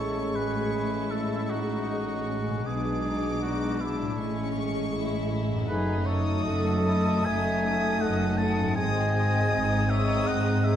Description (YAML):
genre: classical, slow romantic movement for symphony orchestra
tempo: 79 BPM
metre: 4/4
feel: rubato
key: unclear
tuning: A4 = 440 Hz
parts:
  - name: rich chamber violin section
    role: melody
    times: 0.0-10.8 s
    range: C#6 to D#6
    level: -38 LUFS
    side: left 6 dB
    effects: none
  - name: concert flute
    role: second line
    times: 0.0-10.8 s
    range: D4 to F#5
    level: -36 LUFS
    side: left 3 dB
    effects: none
  - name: mellow clarinet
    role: second line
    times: 0.0-10.8 s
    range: B#3 to D#4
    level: -38 LUFS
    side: left 1 dB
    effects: none
  - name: rich chamber violin section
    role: second line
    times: 0.0-10.8 s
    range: B3 to F#4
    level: -38 LUFS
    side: left 2 dB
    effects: none
  - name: warm oboe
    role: second line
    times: 0.0-10.8 s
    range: E4 to A5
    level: -32 LUFS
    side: right 1 dB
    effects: none
  - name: dark bassoon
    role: accompaniment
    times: 0.0-10.8 s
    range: G#3 to A3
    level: -37 LUFS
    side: right 1 dB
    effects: none
  - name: warm chamber viola section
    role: accompaniment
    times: 0.0-10.8 s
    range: G#3 to A4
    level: -34 LUFS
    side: right 1 dB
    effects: none
  - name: dark French horn section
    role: sustained chords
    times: 0.0-10.8 s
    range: G#3 to D#4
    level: -34 LUFS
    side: left 4 dB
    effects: none
  - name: concert harp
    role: arpeggios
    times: 0.0-10.8 s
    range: F#2 to A4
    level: -40 LUFS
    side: left 7 dB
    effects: none
  - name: rich chamber cello section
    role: bass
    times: 0.0-10.8 s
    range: F#2 to B2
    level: -31 LUFS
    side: right 2 dB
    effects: none
  - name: warm studio double bass section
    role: bass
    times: 0.0-10.8 s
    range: F#1 to B1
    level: -32 LUFS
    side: right 2 dB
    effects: none
room: moderate scoring stage reverb, RT60 1.4 s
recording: dark, warm production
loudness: -24 LUFS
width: side -10 dB against mid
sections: 0.0-10.8 A section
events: none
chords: 0.0 Amaj7; 2.7 G#dim/B; 4.2 Amaj7; 5.7 D#dim/F#; 8.8 G#